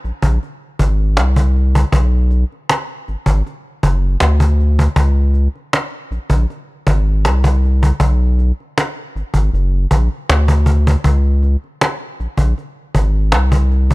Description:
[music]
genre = R&B, neo-soul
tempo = 79 BPM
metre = 4/4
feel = swing 54% on 16ths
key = unclear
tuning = A4 = 440 Hz
[part]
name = round analog bass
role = bass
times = 0.0-13.9 s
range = F#1 to D2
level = -13 LUFS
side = equal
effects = none
[part]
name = cajon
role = drums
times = 0.0-13.9 s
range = none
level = -18 LUFS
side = equal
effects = none
[sound]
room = small room reverb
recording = dark, warm production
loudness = -13 LUFS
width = side -22 dB against mid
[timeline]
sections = 0.0-13.9 A section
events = none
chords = none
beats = 0.41 1.17 | 1.92 2.68 3.44 4.20 | 4.96 5.72 6.48 7.24 | 8.00 8.76 9.52 10.28 | 11.04 11.80 12.56 13.32

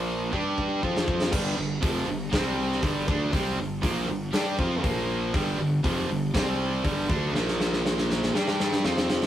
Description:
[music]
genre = hard rock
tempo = 120 BPM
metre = 4/4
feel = straight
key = G minor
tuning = A4 = 440 Hz
[part]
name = cranked stack guitar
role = riff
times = 0.0-9.3 s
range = F2 to G4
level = -28 LUFS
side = right 3 dB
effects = overdrive
[part]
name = distorted electric guitar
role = riff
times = 0.0-9.3 s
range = F2 to G4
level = -35 LUFS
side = left 7 dB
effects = overdrive
[part]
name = scooped high-gain guitar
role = riff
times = 0.0-9.3 s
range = F2 to G4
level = -35 LUFS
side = left 2 dB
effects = distortion
[part]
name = fuzz fingered electric bass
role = bass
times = 0.0-9.3 s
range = F1 to G2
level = -32 LUFS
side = left 1 dB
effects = overdrive
[part]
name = big rock drum kit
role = drums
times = 0.3-9.3 s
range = crash cymbal, hi-hat, kick drum, snare drum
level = -28 LUFS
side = equal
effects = none
[sound]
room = light reverb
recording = rough rehearsal-room recording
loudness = -24 LUFS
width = side -11 dB against mid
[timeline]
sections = 0.0-1.3 A section; 1.3-9.3 B section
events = drum fill 0.3-1.3, 7.3-9.3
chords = 0.3 G5; 0.8 F5; 1.3 G5; 2.3 C5; 2.8 Gm; 4.8 Bb5; 5.3 G5; 6.3 C5; 6.8 G5; 7.3 Bb5; 8.3 G5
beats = 0.33 0.83 | 1.33 1.84 2.34 2.84 | 3.34 3.84 4.34 4.84 | 5.34 5.84 6.34 6.84 | 7.34 7.84 8.34 8.84

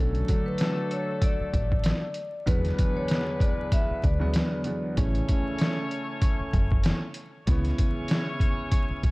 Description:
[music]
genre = hip hop, boom-bap hip-hop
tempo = 96 BPM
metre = 4/4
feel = swing 58% on 16ths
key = B dorian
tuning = A4 = 440 Hz
[part]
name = vibraphone with medium hard mallets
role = melody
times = 0.0-4.9 s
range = A4 to E5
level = -34 LUFS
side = left 3 dB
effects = high-pass filter, low-pass filter, digital delay
[part]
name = dark grand piano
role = accompaniment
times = 0.0-9.1 s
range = E2 to D4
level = -32 LUFS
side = right 1 dB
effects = cassette tape, high-pass filter, low-pass filter
[part]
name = warm horn section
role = stabs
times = 0.0-9.1 s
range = A3 to C#5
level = -36 LUFS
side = left 1 dB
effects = high-pass filter, low-pass filter, digital delay
[part]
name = deep dub fingered electric bass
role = bass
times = 0.0-9.1 s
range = F#1 to E2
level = -26 LUFS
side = equal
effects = none
[part]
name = trip hop sampler-style drum kit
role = drums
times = 0.1-9.1 s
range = hi-hat, kick drum, snare drum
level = -25 LUFS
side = equal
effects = overdrive
[sound]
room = small room ambience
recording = dark, warm production, vinyl crackle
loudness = -24 LUFS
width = side -23 dB against mid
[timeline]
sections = 0.0-9.1 A section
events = none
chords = 0.0 Bm7 (rootless); 2.5 E7; 5.0 A; 7.5 C#m7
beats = 0.60 1.22 1.85 | 2.47 3.10 3.72 4.35 | 4.97 5.60 6.22 6.85 | 7.47 8.10 8.72

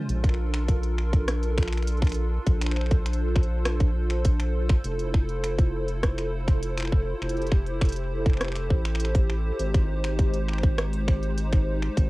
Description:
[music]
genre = IDM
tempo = 101 BPM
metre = 4/4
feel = straight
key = Bb lydian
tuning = A4 = 442 Hz
[part]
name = hollow soft pad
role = sustained chords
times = 0.0-12.1 s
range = Ab3 to C5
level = -31 LUFS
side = equal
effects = ensemble chorus, vintage 12-bit sampler grit, cassette tape
[part]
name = round analog bass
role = bass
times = 0.1-12.1 s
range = F1 to Bb1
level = -27 LUFS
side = equal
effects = none
[part]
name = glitchy drum kit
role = drums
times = 0.1-12.1 s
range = finger snaps, hi-hat, rim click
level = -33 LUFS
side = equal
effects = small room ambience, cassette tape
[part]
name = electronic kick drum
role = drums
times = 0.2-12.1 s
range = none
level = -21 LUFS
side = equal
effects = small room ambience, cassette tape
[sound]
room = little or no reverb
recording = home recording on cassette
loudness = -23 LUFS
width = side -20 dB against mid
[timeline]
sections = 0.0-12.1 A section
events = none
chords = 0.1 Bbmaj7; 4.8 Fmaj7; 9.6 Abmaj7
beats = | 0.09 0.69 1.28 1.87 | 2.47 3.06 3.65 4.25 | 4.84 5.44 6.03 6.63 | 7.22 7.81 8.41 9.00 | 9.60 10.19 10.78 11.38 | 11.97

